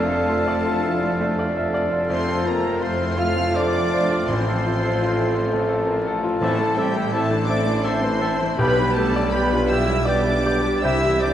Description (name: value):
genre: classical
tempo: 83 BPM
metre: 3/4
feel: uneven beats, rubato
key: A minor from 6.4 s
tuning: A4 = 440 Hz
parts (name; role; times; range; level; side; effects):
- clear concert grand piano; melody; 0.0-11.3 s; A1 to E5; -24 LUFS; left 1 dB; none
- dark studio violin section; melody; 0.0-11.3 s; G5 to F6; -31 LUFS; left 1 dB; none
- mellow hollow small flute group; second line; 0.0-11.3 s; G4 to F5; -31 LUFS; right 1 dB; none
- rich studio violin section; second line; 0.0-11.3 s; A3 to C5; -35 LUFS; left 1 dB; none
- warm clarinet; second line; 0.0-11.3 s; G4 to A4; -32 LUFS; equal; none
- warm oboe; second line; 0.0-11.3 s; E5 to G5; -32 LUFS; right 1 dB; none
- dark studio viola section; accompaniment; 0.0-11.3 s; D3 to D4; -30 LUFS; right 1 dB; none
- mellow bassoon; accompaniment; 0.0-11.3 s; B3 to D4; -30 LUFS; right 1 dB; none
- mellow French horn section; sustained chords; 0.0-11.3 s; A3 to G4; -28 LUFS; left 1 dB; none
- mellow trumpet section; stabs; 0.0-11.3 s; G4 to F5; -28 LUFS; equal; none
- clear tuba; bass; 0.0-11.3 s; F1 to C2; -32 LUFS; right 3 dB; none
- dark symphonic double bass section; bass; 0.0-11.3 s; A1 to F2; -28 LUFS; right 1 dB; none
- warm studio cello section; bass; 0.0-11.3 s; G3 to F4; -31 LUFS; right 2 dB; none
- timpani; percussion; 4.3-7.4 s; A2; -34 LUFS; equal; none
room: wet scoring stage reverb, RT60 1.7 s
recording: vinyl crackle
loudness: -18 LUFS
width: side -10 dB against mid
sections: 0.0-11.3 A section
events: none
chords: 0.0 Dm/F; 2.1 F; 4.3 F/A; 6.4 Am; 8.6 G/B; 10.8 C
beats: 0.65 1.39 | 2.10 2.82 3.54 | 4.29 5.00 5.71 | 6.42 7.13 7.84 | 8.59 9.33 10.06 | 10.83